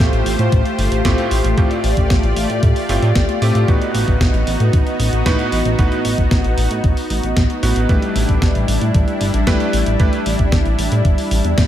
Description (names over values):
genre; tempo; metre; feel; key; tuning
italo disco; 114 BPM; 4/4; straight; unclear; A4 = 441 Hz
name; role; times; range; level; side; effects
lush unison pad; sustained chords; 0.0-11.7 s; G3 to D5; -20 LUFS; left 1 dB; chorus
bright electric grand piano; stabs; 0.0-10.2 s; A2 to B4; -24 LUFS; right 2 dB; vintage 12-bit sampler grit, analog delay
chorused synth bass; bass; 0.0-11.7 s; G1 to A2; -18 LUFS; equal; none
clean 12-bit digital drum machine; drums; 0.0-11.7 s; hi-hat, snare drum; -25 LUFS; equal; none
electronic kick drum; drums; 0.0-11.7 s; none; -16 LUFS; equal; none
room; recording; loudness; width
moderate plate reverb, RT60 1.6 s, digital ambience; dreamy mix soaked in reverb; -14 LUFS; side -11 dB against mid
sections
0.0-11.7 A section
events
none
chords
0.0 Fadd9; 3.7 B/A; 7.9 Em7